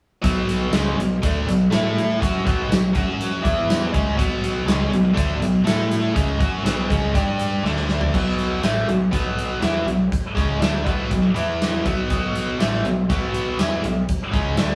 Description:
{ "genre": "classic rock", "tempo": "121 BPM", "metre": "4/4", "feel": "straight", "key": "B dorian", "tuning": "A4 = 442 Hz", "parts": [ { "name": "tight distorted guitar", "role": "riff", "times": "0.2-14.8 s", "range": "A2 to A4", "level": "-24 LUFS", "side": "equal", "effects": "distortion" }, { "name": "fuzz picked electric bass", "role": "bass", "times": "0.2-14.8 s", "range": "A1 to A2", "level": "-28 LUFS", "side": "equal", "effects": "overdrive" }, { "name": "big rock drum kit", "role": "drums", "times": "0.2-14.8 s", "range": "crash cymbal, hi-hat, kick drum, snare drum, tambourine, toms", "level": "-26 LUFS", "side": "equal", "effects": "none" } ], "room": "moderate studio reverb, RT60 0.8 s", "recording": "band playing live in one room", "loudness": "-21 LUFS", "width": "mono", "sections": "0.2-8.1 A section; 8.1-14.8 B section", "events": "drum fill 7.6-8.1", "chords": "0.2 Bm; 1.7 A5; 2.2 B5; 2.9 F#5; 3.4 E5; 3.9 Bm; 5.7 A5; 6.2 B5; 7.1 G5; 7.6 D5; 8.1 Bm; 11.4 E5; 11.9 Bm" }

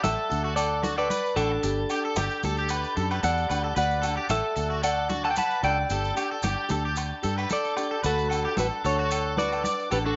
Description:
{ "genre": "highlife guitar band", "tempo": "112 BPM", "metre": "4/4", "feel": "straight", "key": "D major", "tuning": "A4 = 440 Hz", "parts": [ { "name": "clean electric guitar", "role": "melody", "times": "0.0-10.2 s", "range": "D4 to A5", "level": "-30 LUFS", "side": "equal", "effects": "none" }, { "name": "tonewheel organ", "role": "sustained chords", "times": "0.0-10.2 s", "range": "D4 to A5", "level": "-40 LUFS", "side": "equal", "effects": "slow rotary speaker" }, { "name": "electric guitar at the edge of break-up", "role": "arpeggios", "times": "0.0-10.2 s", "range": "F#4 to D5", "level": "-33 LUFS", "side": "equal", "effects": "analog chorus, tape echo" }, { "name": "fingered electric bass", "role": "bass", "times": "0.0-10.1 s", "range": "G1 to G2", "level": "-33 LUFS", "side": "equal", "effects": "none" }, { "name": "agogo bells", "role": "percussion", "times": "0.0-10.1 s", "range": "none", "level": "-39 LUFS", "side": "equal", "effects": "none" }, { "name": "congas", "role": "percussion", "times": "0.0-10.0 s", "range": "none", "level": "-37 LUFS", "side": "equal", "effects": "none" }, { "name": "maracas", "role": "percussion", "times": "0.0-10.0 s", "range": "none", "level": "-42 LUFS", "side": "equal", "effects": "none" }, { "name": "nylon-string guitar", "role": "accompaniment", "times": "0.3-10.1 s", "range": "A3 to G4", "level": "-40 LUFS", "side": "equal", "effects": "none" } ], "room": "light reverb, studio reverb", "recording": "nothing above 7.6 kHz", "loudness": "-26 LUFS", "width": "mono", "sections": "0.0-10.2 A section", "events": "none", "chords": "0.0 D; 1.6 Gsus2; 3.8 D; 5.9 Gsus2; 8.0 D" }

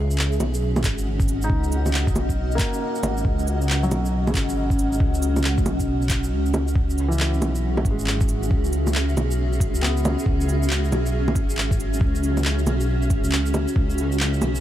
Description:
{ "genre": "future garage", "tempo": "137 BPM", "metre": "4/4", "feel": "swing 63% on 16ths", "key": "C# dorian", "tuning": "A4 = 442 Hz", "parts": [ { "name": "granular cloud pad", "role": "sustained chords", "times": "0.0-14.6 s", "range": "C#4 to F#5", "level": "-27 LUFS", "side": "right 1 dB", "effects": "built-in reverb, sidechain pumping" }, { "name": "dark detuned saw bass", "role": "bass", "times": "0.0-14.6 s", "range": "G#1 to C#2", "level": "-23 LUFS", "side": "equal", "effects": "tube saturation, sidechain pumping" }, { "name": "electronic shaker, handclaps, bongos and cabasa", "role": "drums", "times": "0.1-14.6 s", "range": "none", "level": "-26 LUFS", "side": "right 1 dB", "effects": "none" }, { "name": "electronic kick drum", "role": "drums", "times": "0.8-13.9 s", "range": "none", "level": "-23 LUFS", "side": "equal", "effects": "none" }, { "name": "felt-muted upright piano", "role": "accompaniment", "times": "1.4-13.8 s", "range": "C#3 to D#4", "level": "-30 LUFS", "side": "left 1 dB", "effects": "sidechain pumping, tape echo" } ], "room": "little or no reverb", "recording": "vinyl crackle", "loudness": "-19 LUFS", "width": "side -12 dB against mid", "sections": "0.0-6.8 A section; 6.8-14.6 A section", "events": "none", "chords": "0.0 Badd9; 6.8 C#m7; 13.8 Badd9" }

